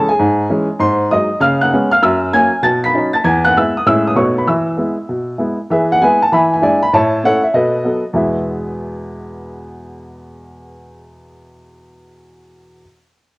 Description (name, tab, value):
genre	jazz, stride piano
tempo	196 BPM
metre	4/4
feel	swing 61% on 8ths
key	E major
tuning	A4 = 440 Hz
part	clear upright piano	solo	0.0-12.8 s	E2 to B6	-12 LUFS	equal	cassette tape
room	moderate spring reverb, RT60 1.6 s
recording	home recording on cassette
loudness	-12 LUFS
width	side -26 dB against mid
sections	0.0-5.7 A section; 5.7-8.1 B section; 8.1-10.6 C section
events	none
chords	0.0 C#m; 0.8 G#7; 1.4 C#7; 2.0 F#7; 2.6 B9; 3.2 E; 3.9 Amaj7; 4.2 B7; 4.5 E; 6.3 E7; 6.9 A; 7.5 B7; 8.1 E